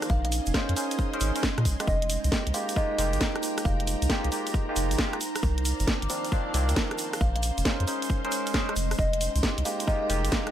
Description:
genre	UK garage, two-step garage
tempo	135 BPM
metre	4/4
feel	swing 67% on 16ths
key	F minor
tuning	A4 = 439 Hz
part	soft string machine	sustained chords	0.0-10.5 s	Db4 to C6	-39 LUFS	left 1 dB	ensemble chorus, sidechain pumping
part	barky tine electric piano	stabs	0.0-10.5 s	Eb3 to C5	-33 LUFS	equal	overdrive, lush chorus, ping-pong delay
part	garage drum kit	drums	0.0-10.5 s	hi-hat, rim click, snare drum	-30 LUFS	equal	none
part	tube shaker	percussion	0.0-10.4 s	none	-37 LUFS	right 2 dB	none
part	warbly tape-like pad	texture	0.0-10.5 s	Ab3 to D6	-35 LUFS	right 4 dB	chorus, built-in reverb, sidechain pumping
part	kalimba	melody	0.1-10.1 s	Bb4 to F5	-34 LUFS	left 1 dB	ping-pong delay
part	soft dub sub bass	bass	0.1-10.3 s	F1 to Bb2	-27 LUFS	equal	tube saturation, sidechain pumping
part	electronic kick drum	drums	0.1-10.4 s	none	-28 LUFS	equal	none
room	little or no reverb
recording	none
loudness	-24 LUFS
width	side -11 dB against mid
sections	0.0-10.5 A section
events	none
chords	0.1 Bbm11; 1.9 Fm11; 5.2 Cm11; 7.2 Bbm11; 9.0 Fm11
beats	| 0.10 0.54 0.99 1.43 | 1.88 2.32 2.76 3.21 | 3.65 4.10 4.54 4.99 | 5.43 5.88 6.32 6.76 | 7.21 7.65 8.10 8.54 | 8.99 9.43 9.88 10.32

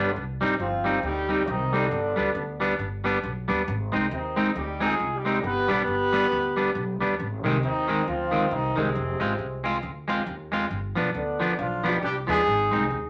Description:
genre	ska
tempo	137 BPM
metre	4/4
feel	swing 59% on 8ths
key	C harmonic minor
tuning	A4 = 439 Hz
part	clean electric guitar	accompaniment	0.0-12.8 s	Eb3 to F4	-28 LUFS	equal	slapback echo
part	upright bass	bass	0.0-13.1 s	F1 to Eb2	-34 LUFS	equal	none
part	dark horn section	melody	0.6-13.1 s	C3 to B4	-28 LUFS	equal	none
room	wet studio reverb, RT60 0.6 s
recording	none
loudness	-26 LUFS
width	mono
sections	0.2-13.1 A section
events	none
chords	0.2 Cm; 1.9 G; 3.7 Ab; 5.4 G; 7.2 Ab; 8.9 Fm; 10.7 G7; 12.5 Ab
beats	| 0.16 0.60 1.04 1.48 | 1.92 2.35 2.79 3.23 | 3.67 4.11 4.55 4.99 | 5.43 5.87 6.31 6.75 | 7.19 7.63 8.06 8.51 | 8.94 9.38 9.82 10.26 | 10.70 11.14 11.58 12.02 | 12.46 12.90

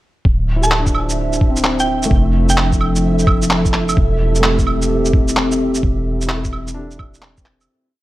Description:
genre	future garage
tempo	129 BPM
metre	4/4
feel	swing 65% on 16ths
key	A minor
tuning	A4 = 439 Hz
part	dark analog pad	sustained chords	0.8-7.7 s	F3 to E5	-20 LUFS	right 1 dB	chorus, sidechain pumping
part	soft 808-style bass	bass	0.2-7.7 s	D1 to F1	-19 LUFS	equal	sidechain pumping
part	electronic kick drum	drums	0.2-7.4 s	none	-16 LUFS	equal	studio ambience
part	flickering grainy texture	texture	0.5-7.7 s	E4 to E5	-29 LUFS	equal	built-in reverb
part	mallet-like synth pluck	melody	0.6-2.8 s	G5 to A5	-23 LUFS	right 2 dB	chorus, tape echo
part	felt-muted upright piano	accompaniment	0.6-7.9 s	A3 to A4	-24 LUFS	left 2 dB	sidechain pumping, tape echo
part	electronic shaker, handclaps and claves	drums	0.6-7.7 s	none	-20 LUFS	right 1 dB	studio ambience
room	light reverb, digital ambience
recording	vinyl crackle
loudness	-13 LUFS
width	side -16 dB against mid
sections	0.2-7.7 groove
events	fade-out 5.2-7.7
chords	0.2 Dm9; 2.1 F6; 4.0 Am7/E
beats	| 0.25 0.71 1.18 1.64 | 2.11 2.58 3.04 3.50 | 3.97 4.43 4.90 5.37 | 5.83 6.30 6.76 7.23

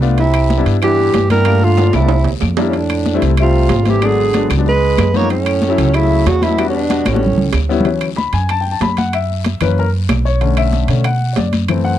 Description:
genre	Afro-Cuban jazz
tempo	188 BPM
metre	4/4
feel	straight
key	D major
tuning	A4 = 440 Hz
part	breathy tenor saxophone	melody	0.0-7.5 s	C#4 to C#5	-17 LUFS	right 1 dB	none
part	bright trombone	second line	0.0-7.5 s	A2 to Bb3	-22 LUFS	right 11 dB	none
part	warm concert grand piano	accompaniment	0.0-12.0 s	D3 to B5	-18 LUFS	left 6 dB	none
part	upright bass	bass	0.0-12.0 s	G#1 to B2	-16 LUFS	right 1 dB	none
part	guiro	percussion	0.0-12.0 s	none	-33 LUFS	left 16 dB	none
part	congas	percussion	0.2-12.0 s	none	-21 LUFS	left 2 dB	none
part	timbales	percussion	0.2-11.8 s	none	-24 LUFS	right 11 dB	none
part	claves	percussion	0.3-11.8 s	none	-29 LUFS	left 15 dB	none
room	studio ambience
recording	dry, close 1970s-style studio recording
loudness	-12 LUFS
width	side -12 dB against mid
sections	0.0-7.9 A section; 7.9-12.0 B section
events	drum fill 1.8-2.7, 7.1-7.9; grand piano solo 7.9-12.0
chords	0.2 Cmaj7; 1.5 Gm7; 2.1 C7; 2.7 Fmaj7; 4.0 G#m7b5; 4.7 C#7; 5.3 F#m7; 6.6 Em7; 7.2 A7; 7.9 Dmaj7; 9.1 F#7; 10.4 Bm9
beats	| 0.18 0.50 0.82 1.14 | 1.46 1.78 2.10 2.42 | 2.74 3.06 3.38 3.70 | 4.02 4.34 4.66 4.98 | 5.30 5.62 5.94 6.26 | 6.58 6.90 7.22 7.54 | 7.86 8.18 8.50 8.82 | 9.14 9.46 9.78 10.10 | 10.42 10.74 11.05 11.37 | 11.69

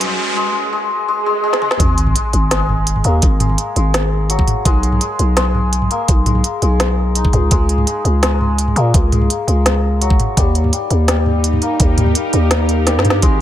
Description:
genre	half-time drum and bass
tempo	168 BPM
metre	4/4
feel	half-time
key	G# minor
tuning	A4 = 440 Hz
part	bowed-like drone	sustained chords	0.0-0.4, 11.3-13.4 s	C#4 to D#5	-23 LUFS	right 2 dB	built-in reverb, vintage 12-bit sampler grit, sidechain pumping
part	santur	arpeggios	0.0-13.4 s	F#3 to G#4	-20 LUFS	left 3 dB	vintage 12-bit sampler grit, digital delay
part	growling 808-style bass	bass	0.0-13.4 s	G#1 to A#2	-15 LUFS	equal	none
part	organic electronic drum kit	drums	0.0-13.3 s	hi-hat, snare drum, toms	-19 LUFS	equal	none
part	riser, swell and sub drop	sound effects	0.0-3.2 s	none	-21 LUFS	right 1 dB	none
part	electronic kick drum	drums	1.8-13.3 s	none	-15 LUFS	equal	overdrive
room	light reverb, digital ambience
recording	high-pass filter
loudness	-13 LUFS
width	side -12 dB against mid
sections	0.0-1.8 A section; 1.8-13.4 B section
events	build-up 0.0-1.8; riser 0.0-0.4; filter sweep 0.0-1.8; swell 1.2-1.8; drum fill 1.5, 12.9-13.2; drop 1.8-13.4; impact 1.8-3.2; kick drops out 12.5-13.2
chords	0.0 B; 1.8 G#5; 4.7 B; 7.5 C#5; 10.4 D#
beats	0.01 | 0.37 0.73 1.09 1.44 | 1.80 2.16 2.52 2.87 | 3.23 3.59 3.94 4.30 | 4.66 5.01 5.37 5.73 | 6.09 6.44 6.80 7.16 | 7.51 7.87 8.23 8.59 | 8.94 9.30 9.66 10.02 | 10.37 10.73 11.09 11.44 | 11.80 12.16 12.52 12.87 | 13.23

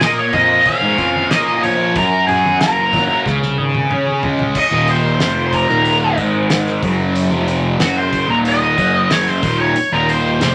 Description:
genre	psychedelic rock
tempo	92 BPM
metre	4/4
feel	straight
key	Eb dorian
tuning	A4 = 440 Hz
part	octave-fuzz lead guitar	melody	0.0-10.5 s	Gb4 to F5	-18 LUFS	equal	distortion
part	fuzz guitar	riff	0.0-10.5 s	Eb2 to Ab4	-19 LUFS	equal	distortion, phaser
part	damped 70s drum kit	drums	0.0-10.5 s	crash cymbal, hi-hat, kick drum, snare drum, toms	-24 LUFS	equal	none
part	fuzz picked electric bass	bass	0.3-10.5 s	Eb1 to Ab2	-25 LUFS	equal	overdrive
part	congas	percussion	0.3-4.5 s	none	-32 LUFS	equal	none
room	moderate club reverb, RT60 0.7 s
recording	none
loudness	-15 LUFS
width	mono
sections	0.0-4.6 A section; 4.6-10.5 B section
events	drum fill 3.3-4.6; lead electric guitar solo 4.6-10.5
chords	0.0 Bbm/F; 2.0 Gbadd9; 3.3 Db5; 4.6 Eb5; 6.2 Ab5; 6.8 Ebm; 8.8 Gb5; 9.4 Eb5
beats	0.01 0.66 1.31 | 1.96 2.61 3.26 3.91 | 4.56 5.21 5.86 6.51 | 7.16 7.81 8.46 9.11 | 9.76 10.41

